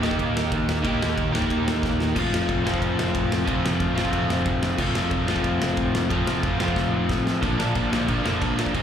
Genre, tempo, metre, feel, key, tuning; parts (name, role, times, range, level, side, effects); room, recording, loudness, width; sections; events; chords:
punk rock; 182 BPM; 4/4; straight; Bb major; A4 = 439 Hz
overdriven electric guitar; riff; 0.0-8.8 s; Ab2 to G4; -23 LUFS; equal
overdriven picked electric bass; bass; 0.0-8.8 s; F1 to Eb2; -29 LUFS; equal
big rock drum kit; drums; 0.0-8.8 s; crash cymbal, kick drum, ride cymbal, snare drum; -27 LUFS; equal
little or no reverb; live gig heard through the venue's PA, club reverb; -21 LUFS; side -8 dB against mid
0.0-7.4 A section; 7.4-8.8 B section
drum fill 1.8-2.2, 6.8-7.4
0.0 Eb; 2.2 F; 7.4 Bb